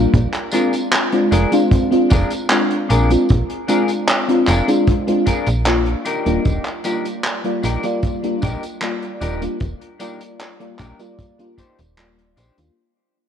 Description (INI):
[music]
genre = vaporwave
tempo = 76 BPM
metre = 4/4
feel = straight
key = Eb major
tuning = A4 = 438 Hz
[part]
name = FM electric piano with soft pad layer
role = accompaniment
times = 0.0-12.7 s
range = G3 to D5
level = -19 LUFS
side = equal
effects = ensemble chorus, analog delay
[part]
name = slap-like FM bass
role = bass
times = 0.0-12.7 s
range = Eb1 to Eb2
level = -19 LUFS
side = equal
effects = none
[part]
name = kick drum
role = drums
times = 0.1-11.7 s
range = none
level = -17 LUFS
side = equal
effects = none
[part]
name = warm soul drum kit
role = drums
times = 0.1-12.7 s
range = handclaps, hi-hat, tambourine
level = -22 LUFS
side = equal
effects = gated reverb
[part]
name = clean electric guitar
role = riff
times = 0.5-12.6 s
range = D4 to C5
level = -25 LUFS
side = left 3 dB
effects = lush chorus, analog delay
[sound]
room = moderate lush hall reverb, RT60 2.5 s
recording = cassette tape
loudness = -15 LUFS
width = side -8 dB against mid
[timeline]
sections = 0.0-12.8 A section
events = fade-out 4.3-12.8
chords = 0.1 Bb7; 6.1 Ebmaj7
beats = | 0.14 0.93 1.72 2.51 | 3.29 4.08 4.87 5.66 | 6.45 7.24 8.03 8.82 | 9.61 10.40 11.19 11.98